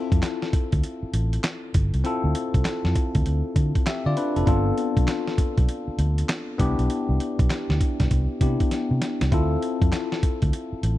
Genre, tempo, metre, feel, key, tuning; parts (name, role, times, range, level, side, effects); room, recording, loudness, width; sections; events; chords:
R&B, new jack swing; 99 BPM; 4/4; swing 64% on 16ths; D dorian; A4 = 440 Hz
bell-like tine electric piano; accompaniment; 0.0-11.0 s; B3 to E5; -27 LUFS; left 3 dB; phaser
vintage muted fingered electric bass; bass; 0.1-11.0 s; F1 to D3; -23 LUFS; equal
dusty soul sampler-style drum kit; drums; 0.1-11.0 s; handclaps, hi-hat, kick drum, snare drum; -24 LUFS; equal
little or no reverb; dry, close 1970s-style studio recording; -21 LUFS; side -15 dB against mid
0.0-11.0 A section
drum fill 8.7-9.3
0.0 Dm9; 4.5 G7 (rootless); 6.6 Cmaj9; 9.3 Dm9